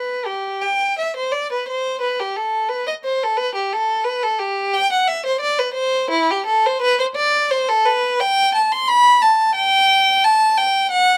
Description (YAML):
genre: classical, baroque-style suite movement for unaccompanied violin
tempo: 88 BPM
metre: 3/4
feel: rubato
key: unclear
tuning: A4 = 439 Hz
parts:
  - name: rich violin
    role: solo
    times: 0.0-11.2 s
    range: E4 to C6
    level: -18 LUFS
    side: equal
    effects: none
room: light reverb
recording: none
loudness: -18 LUFS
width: mono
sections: 0.0-11.2 A section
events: none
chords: none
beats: 0.63 1.34 | 2.03 2.71 3.38 | 4.05 4.73 5.41 | 6.12 6.82 7.50 | 8.19 8.88 9.55 | 10.24 10.92